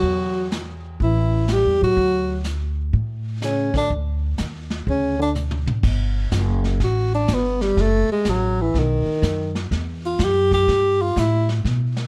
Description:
jazz, small-group swing and bop; 124 BPM; 4/4; swing 66% on 8ths; D major, G major from 5.8 s; A4 = 440 Hz
warm tenor saxophone; melody; 0.0-11.5 s; D#3 to G4; -23 LUFS; equal; plate reverb
dark trombone; second line; 0.0-5.3 s; C#3 to G3; -28 LUFS; equal
upright bass; bass; 0.0-12.1 s; F#1 to B2; -25 LUFS; equal
vintage brush drum kit; drums; 0.0-12.1 s; brushed snare drum, crash cymbal, hi-hat, kick drum, snare drum, toms; -30 LUFS; equal
light reverb; dark, warm production; -21 LUFS; mono
0.0-5.8 A section; 5.8-12.1 B section
drum fill 5.4-5.8; tenor saxophone solo 5.8-12.1
0.0 Esus2; 1.0 A5; 2.0 D; 4.9 D5; 5.8 Gsus2; 7.8 F#m; 8.7 B; 9.7 Emadd9
| 0.03 0.52 1.00 1.48 | 1.97 2.45 2.94 3.42 | 3.90 4.39 4.87 5.36 | 5.84 6.32 6.81 7.29 | 7.78 8.26 8.74 9.23 | 9.71 10.20 10.68 11.16 | 11.65

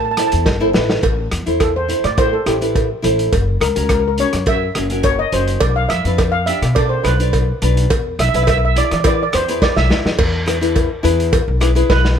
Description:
calypso; 105 BPM; 4/4; straight; A minor; A4 = 440 Hz
steel pan; melody; 0.0-12.2 s; G4 to A5; -19 LUFS; right 2 dB
upright bass; bass; 0.0-12.2 s; F#1 to E3; -19 LUFS; left 1 dB
nylon-string guitar; accompaniment; 0.2-12.1 s; C#4 to D5; -20 LUFS; left 1 dB
vintage drum kit; drums; 0.2-12.2 s; crash cymbal, hi-hat, kick drum, rim click, snare drum; -20 LUFS; left 1 dB
cowbell; percussion; 0.5-12.0 s; -22 LUFS; right 2 dB
little or no reverb; close, detailed microphones; -14 LUFS; side -8 dB against mid
0.0-1.0 A section; 1.0-10.2 B section; 10.2-12.2 C section
drum fill 0.5-1.0, 9.6-10.2, 11.9; steel pan solo 1.0-10.2
0.0 Amadd9; 1.0 Am; 3.3 F#; 5.6 Bdim; 7.9 E7; 10.2 E
0.46 | 1.04 1.61 2.18 2.76 | 3.33 3.90 4.47 5.05 | 5.62 6.19 6.76 7.34 | 7.91 8.48 9.05 9.62 | 10.19 10.76 11.33 11.90

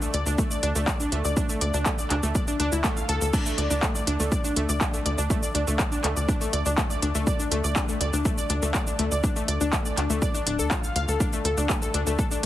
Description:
melodic techno; 122 BPM; 4/4; straight; A4 = 440 Hz
analog pluck; arpeggios; 0.0-12.5 s; A3 to F5; -28 LUFS; left 1 dB; chorus, sidechain pumping, tape echo
techno drum kit; drums; 0.0-12.5 s; crash cymbal, handclaps, hi-hat, shaker; -30 LUFS; equal; overdrive, small room ambience
tight sequencer bass; bass; 0.1-12.5 s; D1 to D2; -26 LUFS; equal; sidechain pumping
electronic kick drum; drums; 0.4-12.3 s; -26 LUFS; equal; overdrive, small room ambience
light reverb; heavily compressed radio sound, multiband compression; -22 LUFS; side -13 dB against mid
0.0-12.5 A section
0.0 N.C.; 3.3 D5; 7.3 N.C.; 11.2 D5
0.38 0.88 | 1.37 1.86 2.35 2.84 | 3.33 3.83 4.32 4.81 | 5.30 5.79 6.29 6.78 | 7.27 7.76 8.25 8.74 | 9.24 9.73 10.22 10.71 | 11.20 11.70 12.19

